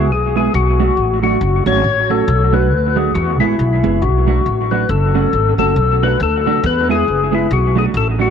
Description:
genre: ska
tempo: 138 BPM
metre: 4/4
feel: swing 58% on 8ths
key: B dorian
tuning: A4 = 444 Hz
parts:
  - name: percussive tonewheel organ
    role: melody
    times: 0.0-8.3 s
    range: E4 to C#5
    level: -16 LUFS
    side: left 8 dB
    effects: overdrive, slow rotary speaker, tape echo
  - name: mellow electric guitar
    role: accompaniment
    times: 0.0-8.3 s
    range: F#3 to G#4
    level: -19 LUFS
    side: right 10 dB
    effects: lush chorus, tape echo
  - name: upright bass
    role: bass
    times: 0.0-8.3 s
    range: F#1 to E2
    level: -16 LUFS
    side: right 1 dB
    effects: none
room: light reverb, studio ambience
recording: 1960s-style stereo with parts hard left and right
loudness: -12 LUFS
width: side -7 dB against mid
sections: 0.0-5.8 A section; 5.8-8.3 B section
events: none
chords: 0.0 E; 0.5 Bm7; 1.4 F#m; 2.3 Bm7; 3.2 E; 4.0 Bm7; 4.9 F#m; 5.8 Bm7; 6.6 E; 7.5 Bm7

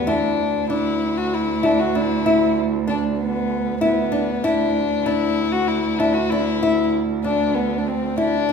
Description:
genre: contemporary instrumental, chamber music in an uneven meter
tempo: 192 BPM (eighths)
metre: 7/8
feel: straight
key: D major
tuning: A4 = 437 Hz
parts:
  - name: dark violin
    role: melody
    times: 0.0-8.5 s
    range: B3 to F#4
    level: -22 LUFS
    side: left 6 dB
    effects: none
  - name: muted cello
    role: bass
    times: 0.0-8.5 s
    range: D2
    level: -24 LUFS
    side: right 6 dB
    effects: none
  - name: nylon-string guitar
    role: arpeggios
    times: 0.1-8.5 s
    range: D4 to E4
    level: -22 LUFS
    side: left 1 dB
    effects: none
room: wet recital hall reverb, RT60 1.6 s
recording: minimal, uncompressed stereo recording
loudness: -18 LUFS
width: side -6 dB against mid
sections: 0.1-8.5 A section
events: none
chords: 0.1 Dsus2

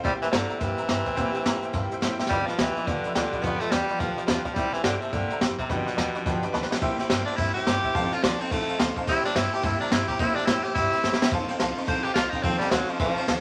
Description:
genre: rockabilly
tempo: 213 BPM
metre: 4/4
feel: swing 61% on 8ths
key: unclear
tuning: A4 = 440 Hz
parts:
  - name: raspy tenor saxophone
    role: melody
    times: 0.0-13.3 s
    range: B2 to C5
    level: -30 LUFS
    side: equal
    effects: none
  - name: picked steel-string acoustic guitar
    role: accompaniment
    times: 0.0-13.4 s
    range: G2 to A4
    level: -35 LUFS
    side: equal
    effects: none
  - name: tack piano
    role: accompaniment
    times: 0.0-13.4 s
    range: B4 to C6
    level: -35 LUFS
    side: equal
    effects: none
  - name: upright bass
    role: bass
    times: 0.0-13.4 s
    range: F1 to Bb2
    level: -36 LUFS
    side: equal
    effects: none
  - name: jazz brush drum kit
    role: drums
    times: 0.0-13.4 s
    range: hi-hat, kick drum, ride cymbal, snare drum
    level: -30 LUFS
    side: equal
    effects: none
room: wet studio reverb, RT60 0.7 s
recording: vinyl crackle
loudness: -25 LUFS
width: mono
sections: 0.0-6.8 A section; 6.8-13.4 B section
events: drum fill 2.2, 6.5, 11.0; tenor saxophone solo 6.8-13.4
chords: 0.1 C7; 2.3 G7; 4.6 C7; 5.7 G7; 6.8 C7; 7.9 F7; 9.1 C7; 11.3 F7

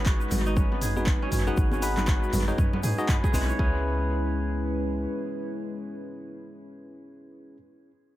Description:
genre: afro house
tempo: 119 BPM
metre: 4/4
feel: swing 60% on 16ths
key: C# minor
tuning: A4 = 440 Hz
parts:
  - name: dark analog pad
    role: sustained chords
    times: 0.0-7.6 s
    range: G#3 to B4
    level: -34 LUFS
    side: equal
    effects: chorus, sidechain pumping
  - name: kora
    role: arpeggios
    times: 0.0-5.3 s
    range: G#3 to C#5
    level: -34 LUFS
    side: equal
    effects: sidechain pumping, dub echo
  - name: warm 808-style bass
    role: bass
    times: 0.0-5.1 s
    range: G#1 to G#2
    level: -28 LUFS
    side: equal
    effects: tube saturation, sidechain pumping
  - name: deep house drum kit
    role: drums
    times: 0.1-3.5 s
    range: handclaps, hi-hat, toms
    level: -33 LUFS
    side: equal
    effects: small room reverb, tape echo
  - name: electronic kick drum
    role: drums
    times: 0.1-3.7 s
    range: none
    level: -24 LUFS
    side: equal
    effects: small room reverb
  - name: egg shaker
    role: percussion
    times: 0.1-3.6 s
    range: none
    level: -42 LUFS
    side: left 4 dB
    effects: none
  - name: congas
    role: percussion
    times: 0.3-3.5 s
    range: none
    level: -34 LUFS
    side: right 1 dB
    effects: none
  - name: bell-like tine electric piano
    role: stabs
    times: 1.0-7.6 s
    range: C#4 to D#5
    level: -34 LUFS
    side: left 2 dB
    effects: sidechain pumping, tape echo
room: light reverb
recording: echo-heavy mix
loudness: -24 LUFS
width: side -15 dB against mid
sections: 0.0-3.6 A section; 3.6-7.6 B section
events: drop 0.0-3.6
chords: 0.0 G#m7; 3.6 C#m7

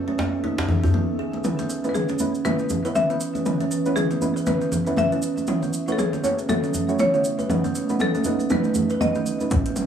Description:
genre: afro house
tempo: 119 BPM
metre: 4/4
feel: swing 58% on 16ths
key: C# minor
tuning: A4 = 440 Hz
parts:
  - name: ethereal airy pad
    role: sustained chords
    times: 0.0-9.9 s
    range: C#2 to E5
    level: -30 LUFS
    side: right 2 dB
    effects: ensemble chorus, built-in reverb, phaser, sidechain pumping
  - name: kalimba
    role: arpeggios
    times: 0.1-9.9 s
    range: G#3 to B4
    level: -27 LUFS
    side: right 2 dB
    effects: sidechain pumping, analog delay
  - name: congas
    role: percussion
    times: 0.1-9.7 s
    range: none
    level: -29 LUFS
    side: left 2 dB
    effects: none
  - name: djembe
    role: percussion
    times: 0.2-0.9 s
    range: none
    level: -23 LUFS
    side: left 1 dB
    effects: none
  - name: deep mellow chord stab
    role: stabs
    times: 1.4-9.7 s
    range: G#3 to C#5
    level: -28 LUFS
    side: right 4 dB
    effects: chorus, sidechain pumping, analog delay
  - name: house drum kit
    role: drums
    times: 1.4-9.9 s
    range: hi-hat, toms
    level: -27 LUFS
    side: equal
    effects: overdrive, low-pass filter on toms, low-pass filter on hats, low-pass filter on room
  - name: cabasa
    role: percussion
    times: 1.4-9.9 s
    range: none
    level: -36 LUFS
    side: right 2 dB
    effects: none
  - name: buzzing marimba with medium hard mallets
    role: melody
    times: 1.9-9.5 s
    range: G#4 to E5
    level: -27 LUFS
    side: left 3 dB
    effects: low-pass filter, analog delay
  - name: electronic kick drum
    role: drums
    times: 9.5-9.6 s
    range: none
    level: -23 LUFS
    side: left 1 dB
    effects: overdrive
room: moderate plate reverb, RT60 1.5 s, small room ambience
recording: dry, gritty hardware recording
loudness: -20 LUFS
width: side -8 dB against mid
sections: 0.0-1.4 A section; 1.4-9.9 B section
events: filter sweep on kalimba 0.0-1.4; filter sweep on ambient pad 0.0-1.4, 1.4-9.9; build-up 1.4-9.9; drum fill 1.4-9.9; filter sweep on marimba 1.4-9.9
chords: 0.0 B7/C#; 1.4 C#m7; 5.5 A6/C#; 7.5 B7/C#

